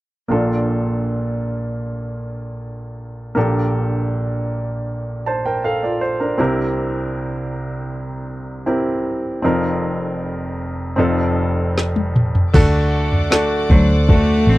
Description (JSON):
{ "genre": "pop ballad", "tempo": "78 BPM", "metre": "4/4", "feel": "straight", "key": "Bb major", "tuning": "A4 = 440 Hz", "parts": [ { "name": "clear baby grand piano", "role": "accompaniment", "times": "0.3-14.6 s", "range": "F1 to A5", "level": "-19 LUFS", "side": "equal", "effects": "none" }, { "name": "smooth R&B drum kit", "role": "drums", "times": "11.8-14.3 s", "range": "crash cymbal, kick drum, snare drum, toms", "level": "-15 LUFS", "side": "equal", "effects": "none" }, { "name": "warm studio string section", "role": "sustained chords", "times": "12.5-14.6 s", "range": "A4 to D6", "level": "-28 LUFS", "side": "left 2 dB", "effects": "none" }, { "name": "vintage muted fingered electric bass", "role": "bass", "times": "12.5-14.6 s", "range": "A1 to D2", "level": "-17 LUFS", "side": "equal", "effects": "none" }, { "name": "rich cello", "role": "melody", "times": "13.7-14.6 s", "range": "F#3 to C4", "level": "-18 LUFS", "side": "left 1 dB", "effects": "none" } ], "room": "little or no reverb", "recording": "dry, close 1970s-style studio recording", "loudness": "-17 LUFS", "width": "side -18 dB against mid", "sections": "0.3-12.5 A section; 12.5-14.6 B section", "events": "drum fill 11.8-12.5", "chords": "0.3 Bbmaj7; 3.4 Gmadd9/Bb; 6.4 C7; 9.4 F7sus4; 11.0 F7; 12.5 D", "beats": "| 0.29 1.07 1.83 2.60 | 3.36 4.12 4.88 5.63 | 6.39 7.15 7.91 8.67 | 9.43 10.20 10.98 11.76 | 12.54 13.31 14.09" }